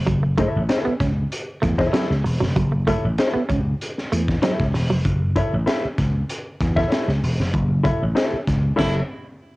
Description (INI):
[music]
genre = funk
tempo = 96 BPM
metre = 4/4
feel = straight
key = F# minor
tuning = A4 = 442 Hz
[part]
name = vintage slap bass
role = bass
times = 0.0-9.0 s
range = E1 to E2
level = -21 LUFS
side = equal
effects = none
[part]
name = semi-hollow electric guitar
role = riff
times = 0.1-5.0 s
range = F#3 to C#4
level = -24 LUFS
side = right 3 dB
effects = tremolo, cassette tape
[part]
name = crunchy breakbeat drum kit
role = drums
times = 0.1-9.0 s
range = crash cymbal, hi-hat, kick drum, snare drum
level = -24 LUFS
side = equal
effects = cassette tape
[part]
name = mellow electric guitar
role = accompaniment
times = 0.4-9.0 s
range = E4 to E5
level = -22 LUFS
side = left 2 dB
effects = cassette tape
[part]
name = edgy baritone saxophone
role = second line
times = 8.8-9.0 s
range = E4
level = -32 LUFS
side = right 1 dB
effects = cassette tape, analog delay
[sound]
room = light reverb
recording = home recording on cassette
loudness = -19 LUFS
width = side -20 dB against mid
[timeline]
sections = 0.0-9.6 A section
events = band accent 7.5-9.6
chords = 0.0 F#m7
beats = | 0.07 0.69 1.32 1.94 | 2.56 3.19 3.81 4.43 | 5.05 5.68 6.30 6.92 | 7.54 8.17 8.79